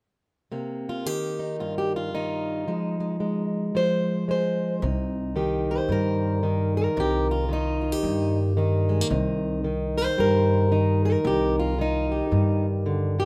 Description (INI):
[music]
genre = acoustic country blues, solo or duo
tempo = 112 BPM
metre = 4/4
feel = swing 60% on 8ths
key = C minor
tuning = A4 = 438 Hz
[part]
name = fingerpicked plugged-in steel-string acoustic guitar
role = melody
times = 0.5-13.2 s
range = G2 to C5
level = -26 LUFS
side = equal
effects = none
[part]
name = upright bass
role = bass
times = 4.8-13.2 s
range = C2 to G2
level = -28 LUFS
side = equal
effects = none
[sound]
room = light reverb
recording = none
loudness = -25 LUFS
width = mono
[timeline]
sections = 0.5-4.8 A section; 4.8-13.2 B section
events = none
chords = 0.5 Cm7; 2.7 Fm7; 4.8 Cm7